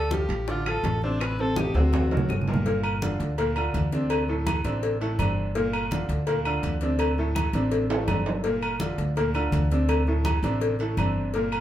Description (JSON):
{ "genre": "latin, salsa", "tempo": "166 BPM", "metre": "4/4", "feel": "straight", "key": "G minor", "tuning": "A4 = 440 Hz", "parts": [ { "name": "breathy alto saxophone", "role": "melody", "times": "0.0-2.4 s", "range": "D4 to B4", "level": "-29 LUFS", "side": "equal", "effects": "none" }, { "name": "bright upright piano", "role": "accompaniment", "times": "0.0-11.6 s", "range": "A2 to D5", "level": "-29 LUFS", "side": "equal", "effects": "none" }, { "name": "upright bass", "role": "bass", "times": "0.0-11.6 s", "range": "G1 to D2", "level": "-27 LUFS", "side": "equal", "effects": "none" }, { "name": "bongos and cowbell", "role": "percussion", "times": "0.1-11.5 s", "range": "none", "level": "-31 LUFS", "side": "left 4 dB", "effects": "none" }, { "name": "congas", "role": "percussion", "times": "0.1-11.6 s", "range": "none", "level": "-32 LUFS", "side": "equal", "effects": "none" }, { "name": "timbales and agogo bells", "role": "percussion", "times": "0.3-11.6 s", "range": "none", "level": "-32 LUFS", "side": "right 4 dB", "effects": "none" }, { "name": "claves", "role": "percussion", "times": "0.7-11.6 s", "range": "none", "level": "-37 LUFS", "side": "left 2 dB", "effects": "none" } ], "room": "moderate large studio reverb, RT60 0.9 s", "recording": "band playing live in one room", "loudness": "-23 LUFS", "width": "side -12 dB against mid", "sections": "0.0-2.7 A section; 2.7-11.6 B section", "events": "drum fill 1.6-2.7, 7.9-8.4", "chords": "0.0 Dm7; 1.2 Am7b5; 1.9 Daug7; 2.7 Gm7; 4.1 D5; 5.5 Gm7; 7.0 D5; 8.4 Gm7; 9.9 D5" }